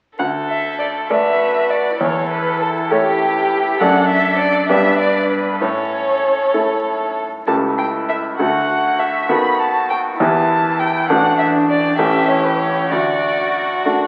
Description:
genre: quick classical-period movement for piano quartet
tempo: 66 BPM (dotted quarters)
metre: 6/8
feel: rubato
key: D major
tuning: A4 = 439 Hz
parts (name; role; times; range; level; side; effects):
- muted violin; melody; 0.2-13.9 s; G4 to B5; -21 LUFS; equal; none
- muted violin; second line; 0.2-14.1 s; D4 to B4; -24 LUFS; equal; none
- bright grand piano; accompaniment; 0.2-14.1 s; A1 to D5; -21 LUFS; equal; none
- muted cello; second line; 1.1-14.1 s; C#4 to F#4; -27 LUFS; equal; none
room: wet recital hall reverb, RT60 1.3 s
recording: very old 78 rpm record, vinyl crackle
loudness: -17 LUFS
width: mono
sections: 0.2-14.1 A section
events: none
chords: 0.2 D; 2.0 A7/E; 3.8 D/F#; 4.7 G; 5.6 A; 7.5 A7/C#; 8.4 D; 9.3 B7/D#; 10.2 Em; 11.1 D/A; 12.0 A7; 12.9 D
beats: | 0.19 1.10 | 2.00 2.90 | 3.80 4.69 | 5.60 6.53 | 7.47 8.38 | 9.29 10.20 | 11.09 11.99 | 12.91 13.85

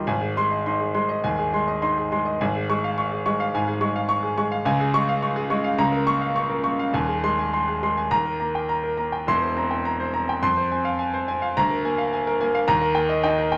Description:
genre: classical, virtuoso piano study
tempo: 106 BPM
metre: 4/4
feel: rubato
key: Ab major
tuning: A4 = 443 Hz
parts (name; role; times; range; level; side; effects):
- warm concert grand piano; solo; 0.0-13.6 s; Eb1 to Db6; -23 LUFS; equal; none
room: moderate large studio reverb, RT60 0.9 s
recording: none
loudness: -23 LUFS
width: mono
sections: 0.1-13.6 A section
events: none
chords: 0.1 Ab; 2.4 Db/Ab; 4.7 Db; 5.8 Bbm/Db; 6.9 Ab/Eb; 8.1 Eb; 9.3 C7/E; 10.4 Fm; 11.6 Bb7/D; 12.7 Eb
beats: | 0.08 0.67 1.26 1.83 | 2.41 2.98 3.54 4.10 | 4.66 5.22 5.78 6.35 | 6.93 7.53 8.12 8.70 | 9.28 9.87 10.43 11.00 | 11.57 12.13 12.69 13.24

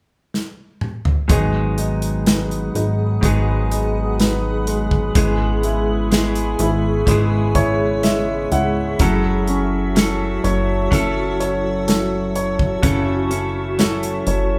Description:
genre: pop ballad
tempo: 62 BPM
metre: 4/4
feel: straight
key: unclear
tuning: A4 = 442 Hz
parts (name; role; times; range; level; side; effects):
- natural country drum kit; drums; 0.3-14.5 s; hi-hat, kick drum, snare drum, toms; -22 LUFS; equal; none
- warm concert grand piano; accompaniment; 1.3-14.6 s; C#3 to F#5; -25 LUFS; equal; none
- granular cloud pad; sustained chords; 2.4-14.6 s; F#4 to D#6; -28 LUFS; equal; built-in reverb
- direct-recorded clean electric guitar; arpeggios; 1.3-14.6 s; G#2 to A4; -26 LUFS; equal; none
- plucky analog bass; bass; 1.3-14.6 s; F#1 to C#2; -24 LUFS; equal; none
room: moderate large studio reverb, RT60 1.2 s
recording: band playing live in one room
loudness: -19 LUFS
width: mono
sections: 0.0-1.3 A section; 1.3-14.6 B section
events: drum fill 0.3-1.3; grand piano fill 7.1-9.0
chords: 0.0 N.C.; 1.3 G#m7; 5.2 C#m7/G#; 9.0 F#m7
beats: 0.33 | 1.29 2.26 3.23 4.19 | 5.16 6.12 7.08 8.04 | 9.00 9.96 10.92 11.88 | 12.83 13.79

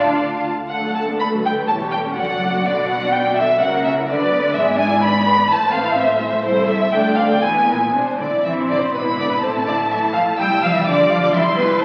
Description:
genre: quick classical-period movement for string orchestra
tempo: 124 BPM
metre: 2/4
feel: rubato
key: D major, A minor from 4.6 s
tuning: A4 = 439 Hz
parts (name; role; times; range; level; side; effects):
- rich chamber violin section; melody; 0.0-11.8 s; C5 to E6; -21 LUFS; equal; none
- warm studio violin section; second line; 0.0-11.8 s; G#4 to A5; -24 LUFS; equal; none
- rich chamber viola section; accompaniment; 0.0-11.8 s; D3 to D5; -26 LUFS; equal; none
- rich chamber cello section; bass; 0.0-11.8 s; C2 to F4; -27 LUFS; equal; none
- rich symphonic double bass section; bass; 0.0-11.8 s; E1 to D2; -36 LUFS; equal; none
room: wet scoring stage reverb, RT60 1.6 s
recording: very old 78 rpm record, vinyl crackle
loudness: -18 LUFS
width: mono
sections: 0.7-8.4 A section; 8.4-11.8 B section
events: none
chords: 0.0 Dm; 0.7 D; 1.7 A7/E; 2.2 D/F#; 2.7 Bm; 3.6 F#7/C#; 4.1 Bm/D; 4.6 E7/G#; 5.5 Am; 6.5 Am/C; 6.9 D5; 7.4 E; 8.4 Am; 8.9 E7/G#; 9.4 Am; 10.4 C; 10.9 G7/B; 11.3 C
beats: 0.20 | 0.71 1.21 | 1.69 2.17 | 2.65 3.13 | 3.61 4.09 | 4.56 5.02 | 5.49 5.97 | 6.45 6.93 | 7.43 7.94 | 8.45 8.94 | 9.43 9.91 | 10.39 10.86 | 11.34 11.81

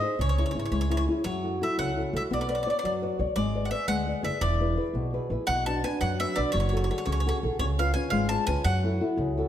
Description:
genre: italian folk, Italian serenade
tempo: 114 BPM (dotted quarters)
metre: 6/8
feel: straight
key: F# minor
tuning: A4 = 441 Hz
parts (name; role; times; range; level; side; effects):
- bowl-back mandolin; melody; 0.0-9.5 s; C#5 to A5; -31 LUFS; equal; none
- nylon-string guitar; accompaniment; 0.0-9.5 s; B2 to D5; -29 LUFS; left 2 dB; none
- upright bass; bass; 0.2-9.4 s; E1 to F#2; -29 LUFS; right 1 dB; none
room: wet recital hall reverb, RT60 1.4 s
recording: none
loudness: -25 LUFS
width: side -10 dB against mid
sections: 0.0-1.2 A section; 1.2-9.5 B section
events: none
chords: 0.2 C#m; 1.2 F#m7; 2.3 Bmadd9; 3.4 G#dim; 4.4 E; 5.5 Bm; 6.5 F#madd9; 7.6 C#7; 8.6 F#m7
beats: | 0.19 0.71 | 1.24 1.78 | 2.31 2.83 | 3.36 3.88 | 4.41 4.94 | 5.48 6.01 | 6.54 7.07 | 7.60 8.12 | 8.65 9.18

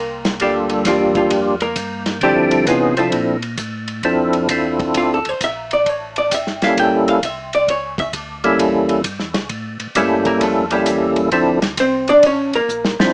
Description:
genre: soul jazz organ trio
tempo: 132 BPM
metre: 4/4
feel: swing 66% on 8ths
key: D minor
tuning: A4 = 440 Hz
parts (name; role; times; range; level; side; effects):
- archtop guitar, miked and amplified; accompaniment; 0.0-13.0 s; F3 to G5; -17 LUFS; equal; none
- tonewheel organ; bass; 0.0-13.1 s; G1 to D3; -28 LUFS; equal; overdrive, chorus vibrato
- warm soul drum kit; drums; 0.2-13.1 s; hi-hat, kick drum, ride cymbal, snare drum; -24 LUFS; equal; none
- percussive tonewheel organ; melody; 0.4-13.1 s; E3 to C5; -15 LUFS; equal; slow rotary speaker, chorus vibrato
room: moderate studio reverb, RT60 0.5 s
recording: small speaker sound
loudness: -14 LUFS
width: side -39 dB against mid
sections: 0.0-13.1 A section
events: hollow-body jazz guitar solo 0.0-13.1; drum fill 12.7-13.1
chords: 0.0 Gm7; 2.2 Dm7; 5.9 A7b9; 11.3 Dm7; 12.2 A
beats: | 0.40 0.85 1.31 1.76 | 2.22 2.67 3.13 3.58 | 4.04 4.49 4.95 5.40 | 5.86 6.31 6.77 7.22 | 7.68 8.13 8.59 9.04 | 9.50 9.95 10.41 10.87 | 11.32 11.78 12.23 12.69

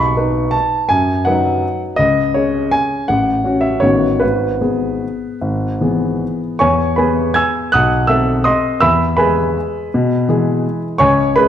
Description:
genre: classical, piano waltz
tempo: 147-172 BPM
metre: 3/4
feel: rubato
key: E major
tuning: A4 = 440 Hz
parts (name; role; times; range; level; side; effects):
- warm grand piano; solo; 0.0-11.5 s; G#1 to G#6; -13 LUFS; equal; none
room: moderate recital hall reverb, RT60 1.4 s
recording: dark, warm production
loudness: -13 LUFS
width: side -10 dB against mid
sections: 0.0-6.6 A section; 6.6-11.5 A section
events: none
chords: 0.0 B; 2.0 C#5; 3.1 F#m/A; 3.8 B7/A; 4.2 E/G#; 6.6 E; 7.7 B7b9; 8.8 E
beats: 0.16 0.54 | 0.91 1.26 1.63 | 1.99 2.35 2.72 | 3.08 3.45 3.84 | 4.23 4.62 5.03 | 5.42 5.82 6.22 | 6.61 6.98 7.36 | 7.72 8.08 8.45 | 8.82 9.18 9.56 | 9.92 10.28 10.64 | 11.00 11.36

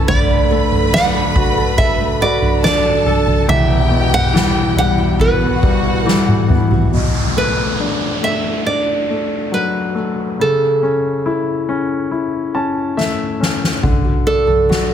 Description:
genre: pop ballad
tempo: 70 BPM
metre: 4/4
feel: straight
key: B minor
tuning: A4 = 440 Hz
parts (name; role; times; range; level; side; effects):
- warm symphonic violin section; second line; 0.0-6.9 s; F#4 to B5; -22 LUFS; equal; none
- clear baby grand piano; accompaniment; 0.0-14.9 s; E1 to A5; -19 LUFS; left 4 dB; none
- nylon-string guitar; arpeggios; 0.0-7.5, 13.8-14.9 s; D3 to A4; -22 LUFS; right 7 dB; digital delay
- nylon-string guitar; melody; 0.1-14.9 s; A4 to F#5; -18 LUFS; right 3 dB; none
- soft-mallet drum kit; drums; 0.1-6.9, 13.0-14.9 s; kick drum, snare drum, toms; -16 LUFS; equal; none
- downlifter; sound effects; 6.9-13.8 s; none; -25 LUFS; equal; none
room: moderate concert hall reverb, RT60 2.0 s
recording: none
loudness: -13 LUFS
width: side -9 dB against mid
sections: 0.0-6.9 A section; 6.9-14.9 B section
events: drum fill 6.1-6.9, 13.0-13.8; grand piano fill 12.1-13.8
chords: 0.1 D; 3.5 Emadd9; 6.9 Bm7; 10.4 A/C#; 13.8 D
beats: | 0.08 0.93 1.78 2.63 | 3.48 4.33 5.19 6.06 | 6.93 7.80 8.67 9.53 | 10.40 11.26 12.12 12.97 | 13.83 14.69

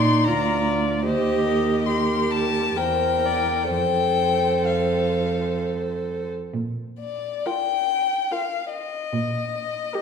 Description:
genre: classical, slow romantic movement for string quartet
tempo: 62-76 BPM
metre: 3/4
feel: rubato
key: Bb major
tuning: A4 = 438 Hz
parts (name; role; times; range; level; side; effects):
- warm violin; melody; 0.0-10.0 s; D5 to C6; -24 LUFS; left 8 dB; none
- dark violin; second line; 0.0-10.0 s; Bb4 to D5; -27 LUFS; left 1 dB; none
- warm viola; accompaniment; 0.0-10.0 s; Eb4 to Bb4; -26 LUFS; right 3 dB; none
- warm cello; bass; 0.0-9.8 s; D2 to Bb2; -26 LUFS; right 3 dB; none
room: wet recital hall reverb, RT60 1.6 s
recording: recorded in a church or concert hall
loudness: -21 LUFS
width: side -6 dB against mid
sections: 0.0-6.5 A section; 6.5-10.0 B section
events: none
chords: 0.0 Bb; 1.1 Cm/Eb; 2.8 C7/E; 3.7 F; 6.5 Bb5; 9.1 Eb5/Bb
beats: 0.26 | 1.06 1.89 2.77 | 3.71 4.66 5.61 | 6.54 7.46 8.32 | 9.13 9.95

